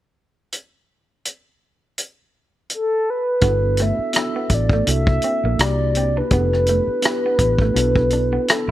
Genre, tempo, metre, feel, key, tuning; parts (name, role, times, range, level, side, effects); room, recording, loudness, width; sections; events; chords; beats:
R&B, neo-soul; 83 BPM; 4/4; swing 56% on 16ths; G major; A4 = 441 Hz
warm soul drum kit; drums; 0.5-8.7 s; hi-hat, kick drum, rim click; -20 LUFS; equal
mellow horn-like synth lead; melody; 2.7-8.7 s; A4 to E5; -21 LUFS; equal; chorus, slapback echo
electric guitar through a small old amp; second line; 3.4-8.7 s; A3 to D4; -28 LUFS; right 4 dB
mellow tine electric piano; accompaniment; 3.4-8.7 s; Bb3 to B4; -25 LUFS; equal; medium stereo tremolo
vintage muted fingered electric bass; bass; 3.4-8.7 s; F1 to C2; -20 LUFS; equal
small room ambience; -16 LUFS; side -14 dB against mid
0.5-3.4 A section; 3.4-8.7 B section
0.5 N.C.; 3.4 Gmaj9; 4.9 C13; 5.6 C9; 6.3 Fmaj9#11; 7.8 Bm7
| 0.53 1.25 1.97 2.70 | 3.42 4.14 4.87 5.59 | 6.31 7.03 7.76 8.48